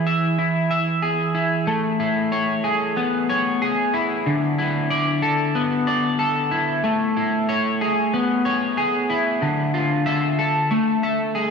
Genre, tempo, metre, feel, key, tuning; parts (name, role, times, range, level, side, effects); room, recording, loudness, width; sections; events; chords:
dream pop; 93 BPM; 4/4; straight; A major; A4 = 440 Hz
electric guitar at the edge of break-up; solo; 0.0-11.5 s; D3 to E5; -19 LUFS; left 1 dB; analog chorus, digital delay
wet huge ambient reverb, RT60 4.9 s; dark, warm production; -19 LUFS; side -5 dB against mid
0.0-1.7 A section; 1.7-11.5 B section
0.0 E; 1.7 Amaj9; 4.3 Dsus2; 6.8 Amaj9; 9.4 Dmadd9; 10.7 A5